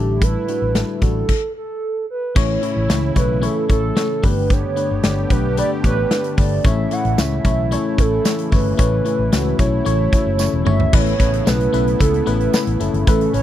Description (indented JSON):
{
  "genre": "1980s-style pop",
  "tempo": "112 BPM",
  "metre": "4/4",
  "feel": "straight",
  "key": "unclear",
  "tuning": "A4 = 439 Hz",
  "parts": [
    { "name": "hollow clarinet-like synth lead", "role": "melody", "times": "0.0-13.4 s", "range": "G4 to F#5", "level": "-22 LUFS", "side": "right 4 dB", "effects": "chorus, tape echo" },
    { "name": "FM electric piano", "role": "accompaniment", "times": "0.0-13.4 s", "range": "G2 to D5", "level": "-22 LUFS", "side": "left 8 dB", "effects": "chorus" },
    { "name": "brassy analog pad", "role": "sustained chords", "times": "0.0-13.4 s", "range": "C#3 to G4", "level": "-26 LUFS", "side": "right 2 dB", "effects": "chorus" },
    { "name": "mellow fretless electric bass", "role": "bass", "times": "0.0-13.4 s", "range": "E1 to C#2", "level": "-20 LUFS", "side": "equal", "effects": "none" },
    { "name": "big rock drum kit", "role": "drums", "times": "0.2-13.4 s", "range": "crash cymbal, hi-hat, kick drum, snare drum, toms", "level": "-18 LUFS", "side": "equal", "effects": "none" },
    { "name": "tambourine", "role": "percussion", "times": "7.2-12.7 s", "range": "none", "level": "-30 LUFS", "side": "right 23 dB", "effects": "none" }
  ],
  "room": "little or no reverb",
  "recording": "dry, close 1970s-style studio recording",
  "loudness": "-15 LUFS",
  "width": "side -12 dB against mid",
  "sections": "0.0-2.4 A section; 2.4-10.9 B section; 10.9-13.4 C section",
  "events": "stop 1.3-2.4; drum fill 10.4-10.9",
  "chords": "0.0 A7sus4; 2.4 A; 4.2 Gadd9; 6.6 A; 10.9 Aadd9"
}